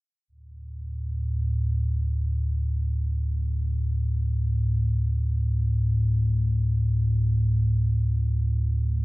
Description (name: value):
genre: ambient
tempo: free time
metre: none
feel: none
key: unclear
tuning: A4 = 439 Hz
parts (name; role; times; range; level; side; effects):
- deep rumbling drone; drone; 0.6-9.0 s; D2 to A2; -23 LUFS; equal; built-in reverb, wide subtle chorus
room: wet huge ambient reverb, RT60 8.3 s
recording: dark, warm production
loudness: -23 LUFS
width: side -21 dB against mid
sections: 0.3-9.0 A section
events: none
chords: 0.3 D5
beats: free time